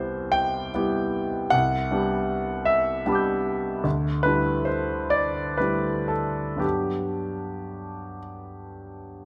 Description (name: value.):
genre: classical, impressionist solo piano.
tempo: 37-53 BPM (dotted quarters).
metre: 6/8.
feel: rubato.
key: G major.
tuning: A4 = 439 Hz.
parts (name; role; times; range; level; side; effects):
clear grand piano; solo; 0.0-9.2 s; C2 to G6; -26 LUFS; equal; none.
room: moderate recital hall reverb, RT60 1.7 s.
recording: close, detailed microphones.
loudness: -25 LUFS.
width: mono.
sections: 0.0-9.2 A section.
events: none.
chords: 0.0 Cmaj7; 1.5 G6/C; 3.8 Dsus24; 6.6 Gmaj7.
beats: 0.34 | 1.52 2.69 | 3.85 5.14 | 6.63 8.21.